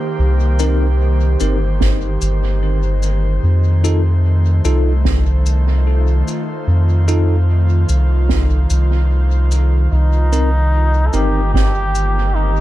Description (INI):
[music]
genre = ambient dub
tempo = 74 BPM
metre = 4/4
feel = straight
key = C dorian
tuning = A4 = 440 Hz
[part]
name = airy breathy pad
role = sustained chords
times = 0.0-12.6 s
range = Eb3 to C5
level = -23 LUFS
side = right 1 dB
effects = chorus
[part]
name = soft dub sub bass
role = bass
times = 0.2-12.6 s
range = G1 to F2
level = -14 LUFS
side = equal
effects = none
[part]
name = bell-like tine electric piano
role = stabs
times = 0.6-11.4 s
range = C4 to Bb4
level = -24 LUFS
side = left 1 dB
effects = fast stereo tremolo, dub echo
[part]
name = shaker and snare drum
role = drums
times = 0.6-12.1 s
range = none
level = -26 LUFS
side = right 6 dB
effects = dub echo
[part]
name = electronic kick drum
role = drums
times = 1.8-11.7 s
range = none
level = -21 LUFS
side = equal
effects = none
[part]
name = trombone with straight mute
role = melody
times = 9.9-12.6 s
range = Eb4 to A4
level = -21 LUFS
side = equal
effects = dub echo
[sound]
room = studio reverb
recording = dark, warm production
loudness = -13 LUFS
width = side -15 dB against mid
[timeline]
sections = 0.0-12.6 A section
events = none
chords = 0.0 Cm7; 3.4 F7; 9.9 Cm7